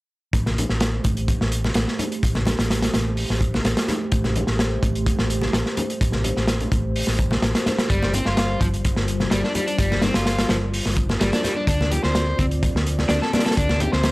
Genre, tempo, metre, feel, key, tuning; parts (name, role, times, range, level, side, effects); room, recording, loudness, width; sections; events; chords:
breakbeat, breaks; 127 BPM; 4/4; swing 53% on 16ths; A minor; A4 = 439 Hz
dark analog pad; sustained chords; 0.8-14.1 s; G3 to E5; -29 LUFS; equal; chorus, vintage 12-bit sampler grit, sidechain pumping
hollow-body short-scale fingered electric bass; bass; 0.3-14.1 s; G1 to D2; -24 LUFS; equal
crunchy breakbeat drum kit; drums; 0.3-14.1 s; hi-hat, kick drum, snare drum; -22 LUFS; equal
congas; percussion; 0.5-13.9 s; -30 LUFS; left 2 dB
overdriven electric guitar; riff; 7.9-14.1 s; F3 to C5; -25 LUFS; equal; tube saturation, analog delay
small room ambience; dry, gritty hardware recording; -19 LUFS; side -21 dB against mid
0.3-14.1 A section
0.3 Am7; 7.9 G7sus4; 11.7 Dm7